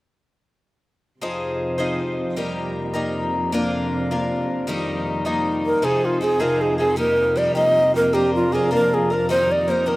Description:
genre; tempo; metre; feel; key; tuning
celtic folk, Celtic jig; 104 BPM (dotted quarters); 6/8; straight; F dorian; A4 = 440 Hz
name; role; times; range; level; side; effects
picked twelve-string acoustic guitar; accompaniment; 1.2-10.0 s; F2 to C5; -23 LUFS; left 2 dB; slapback echo
dark studio string section; drone; 1.2-10.0 s; F2 to C3; -27 LUFS; right 2 dB; none
breathy bright long shakuhachi; melody; 5.7-10.0 s; F4 to Eb5; -18 LUFS; equal; none
room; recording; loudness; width
little or no reverb; recorded outdoors, with no room sound; -18 LUFS; side -19 dB against mid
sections
1.2-5.8 A section; 5.8-10.0 B section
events
none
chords
1.2 Fm7; 2.4 Eb; 3.5 Bb; 4.7 Eb; 5.8 Fm7; 7.0 Eb; 8.1 Bb; 9.3 Eb

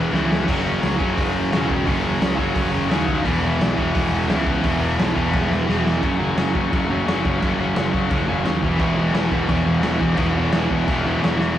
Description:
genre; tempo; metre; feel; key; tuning
punk rock; 173 BPM; 4/4; straight; unclear; A4 = 440 Hz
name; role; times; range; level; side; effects
crunchy overdriven guitar; riff; 0.0-11.6 s; E2 to F#3; -24 LUFS; right 3 dB; none
tight distorted guitar; riff; 0.0-11.6 s; E2 to F#3; -24 LUFS; left 4 dB; distortion
tight distorted guitar; riff; 0.0-6.0, 8.8-11.6 s; E2 to F#3; -26 LUFS; equal; distortion
fuzz picked electric bass; bass; 0.0-11.5 s; E1 to D#2; -24 LUFS; equal; overdrive
raw garage drum kit; drums; 0.1-11.5 s; crash cymbal, hi-hat, kick drum, snare drum; -24 LUFS; equal; none
room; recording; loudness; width
moderate studio reverb, RT60 0.6 s; rough rehearsal-room recording, warm saturation; -18 LUFS; side -11 dB against mid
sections
0.0-6.0 A section; 6.0-11.6 B section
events
drum fill 0.1-0.5, 5.3-6.0, 11.4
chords
0.5 F#5; 3.3 E5; 6.0 F#5; 8.6 E5

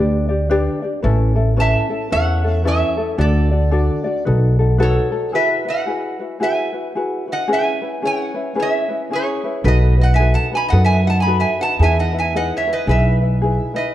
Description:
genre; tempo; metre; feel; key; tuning
Hawaiian; 112 BPM; 4/4; swing 61% on 8ths; E major from 5.3 s; A4 = 440 Hz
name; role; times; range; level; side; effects
metal-body resonator slide guitar; melody; 0.0-13.9 s; G#4 to B5; -20 LUFS; right 2 dB; none
ukulele; accompaniment; 0.0-13.9 s; C#4 to D5; -21 LUFS; left 2 dB; none
upright bass; bass; 0.0-5.0, 9.6-13.6 s; A1 to F#2; -16 LUFS; equal; none
room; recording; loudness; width
light reverb; dark, warm production; -15 LUFS; side -13 dB against mid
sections
0.0-5.3 A section; 5.3-13.9 B section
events
none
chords
0.0 G; 1.0 Aadd9; 3.2 D; 4.3 B7; 5.3 Eadd9; 7.5 C#m7; 9.6 B7; 11.8 Emaj7

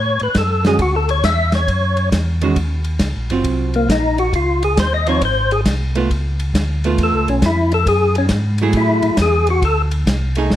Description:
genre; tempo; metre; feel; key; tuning
soul jazz organ trio; 136 BPM; 4/4; swing 66% on 8ths; unclear; A4 = 440 Hz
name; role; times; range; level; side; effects
percussive tonewheel organ; melody; 0.0-9.8 s; A#3 to E5; -17 LUFS; left 2 dB; slow rotary speaker, overdrive, chorus vibrato
mellow tonewheel organ; bass; 0.0-10.6 s; F#1 to A2; -18 LUFS; equal; overdrive, chorus vibrato, slow rotary speaker
warm soul drum kit; drums; 0.2-10.6 s; hi-hat, kick drum, ride cymbal, snare drum; -22 LUFS; equal; none
archtop guitar, miked and amplified; accompaniment; 0.7-10.5 s; D3 to G#4; -20 LUFS; right 5 dB; none
room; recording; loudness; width
light reverb; none; -14 LUFS; side -12 dB against mid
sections
0.0-10.6 A section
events
tonewheel organ solo 0.0-10.6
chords
0.0 A6; 0.8 Dmaj9; 2.6 D#m9; 3.5 D#m69; 4.3 C#maj9; 6.1 C#7alt; 7.9 F#m9; 9.6 D5

